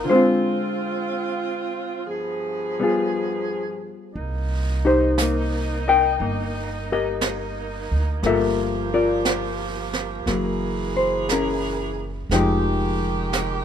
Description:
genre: jazz ballad.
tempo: 59 BPM.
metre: 4/4.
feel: swing 67% on 8ths.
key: C minor.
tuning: A4 = 440 Hz.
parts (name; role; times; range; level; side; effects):
hollow-body jazz guitar; accompaniment; 0.0-13.6 s; D3 to G5; -22 LUFS; left 3 dB; none.
clear saxophone section; sustained chords; 0.0-13.6 s; G2 to Ab4; -28 LUFS; right 3 dB; none.
upright bass; bass; 0.0-13.6 s; F1 to D2; -26 LUFS; right 1 dB; none.
jazz brush drum kit; drums; 4.2-13.6 s; brushed snare drum, hi-hat, snare drum; -30 LUFS; right 4 dB; none.
room: little or no reverb.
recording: minimal, uncompressed stereo recording.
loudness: -20 LUFS.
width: side -8 dB against mid.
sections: 0.0-4.2 A section; 4.2-13.6 B section.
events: break 0.1-4.2.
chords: 0.1 Dm7b5; 2.1 G7b9; 4.2 Cm7; 8.2 Gm9; 10.3 F#9; 12.3 Fm9.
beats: | 0.06 1.08 2.10 3.12 | 4.15 5.17 6.19 7.21 | 8.23 9.25 10.27 11.29 | 12.30 13.32.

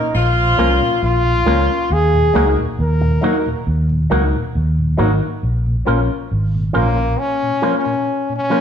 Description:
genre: reggae.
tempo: 68 BPM.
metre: 4/4.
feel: straight.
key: Bb minor.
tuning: A4 = 440 Hz.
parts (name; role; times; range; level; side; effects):
bright trombone; melody; 0.0-8.6 s; Bb3 to Bb4; -18 LUFS; left 2 dB; none.
dark horn section; second line; 0.0-1.4 s; F3 to F4; -20 LUFS; equal; none.
mellow tonewheel organ; accompaniment; 0.0-8.6 s; Eb2 to Eb4; -26 LUFS; equal; chorus vibrato, slapback echo.
vintage muted fingered electric bass; bass; 0.1-7.1 s; Ab1 to Eb2; -17 LUFS; equal; none.
electric guitar with an envelope filter; accompaniment; 0.6-8.6 s; F3 to Gb4; -23 LUFS; right 2 dB; none.
warm upright piano; stabs; 0.6-8.6 s; Db4 to Bb4; -23 LUFS; left 3 dB; none.
room: wet stone room reverb, RT60 1.2 s.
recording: band playing live in one room.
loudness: -14 LUFS.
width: side -8 dB against mid.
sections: 0.0-5.4 A section; 5.4-8.6 B section.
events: trombone solo 5.4-8.6.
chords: 0.0 Bbm; 1.9 Ebm; 5.4 Bbm.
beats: 0.14 1.02 | 1.90 2.78 3.66 4.54 | 5.42 6.30 7.18 8.06.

